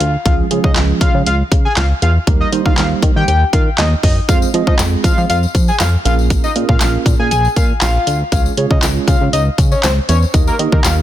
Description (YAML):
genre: dance-pop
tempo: 119 BPM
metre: 4/4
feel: straight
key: unclear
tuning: A4 = 440 Hz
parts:
  - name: fat analog lead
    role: melody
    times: 0.0-10.9 s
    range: Bb4 to Ab5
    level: -19 LUFS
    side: left 2 dB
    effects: chorus, sidechain pumping, ping-pong delay
  - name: chorused synth bass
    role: bass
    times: 0.0-11.0 s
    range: Bb1 to F3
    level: -16 LUFS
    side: equal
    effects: sidechain pumping
  - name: pop drum kit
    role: drums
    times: 0.0-11.0 s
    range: handclaps, hi-hat, kick drum, snare drum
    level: -15 LUFS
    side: equal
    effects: none
  - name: mellow tine electric piano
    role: accompaniment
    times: 0.3-11.0 s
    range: F3 to Eb5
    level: -21 LUFS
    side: right 7 dB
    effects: wide subtle chorus, sidechain pumping
  - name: tambourine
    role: percussion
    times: 4.3-11.0 s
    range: none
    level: -28 LUFS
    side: left 13 dB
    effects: none
room: little or no reverb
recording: dense, heavily limited modern master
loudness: -11 LUFS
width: side -12 dB against mid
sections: 0.0-11.0 A section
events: none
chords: 0.3 Db; 2.3 Eb; 4.3 Fm; 6.1 Bbm7; 8.3 Db; 10.3 Eb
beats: | 0.26 0.76 1.26 1.77 | 2.27 2.78 3.28 3.78 | 4.29 4.79 5.30 5.80 | 6.30 6.81 7.31 7.82 | 8.32 8.83 9.33 9.84 | 10.34 10.84